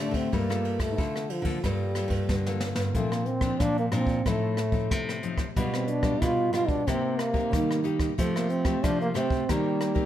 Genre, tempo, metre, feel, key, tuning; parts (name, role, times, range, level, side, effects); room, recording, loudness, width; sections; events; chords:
samba and choro; 92 BPM; 4/4; straight; G minor; A4 = 440 Hz
breathy trombone; melody; 0.0-10.1 s; F3 to F4; -29 LUFS; right 1 dB
nylon-string guitar; accompaniment; 0.0-10.1 s; A2 to A4; -32 LUFS; left 6 dB
nylon-string guitar; bass; 0.0-10.1 s; G2 to F3; -30 LUFS; right 2 dB
jazz brush drum kit; drums; 0.1-10.1 s; hi-hat, kick drum, ride cymbal, rim click, snare drum; -31 LUFS; equal
light reverb; -24 LUFS; side -11 dB against mid
0.0-2.9 A section; 2.9-10.1 B section
drum fill 2.3-2.9
0.3 Gm9; 2.9 Bbadd9; 4.3 F7/A; 5.6 G7/B; 6.9 Cm7; 8.2 Fadd9; 9.5 Cm7/Eb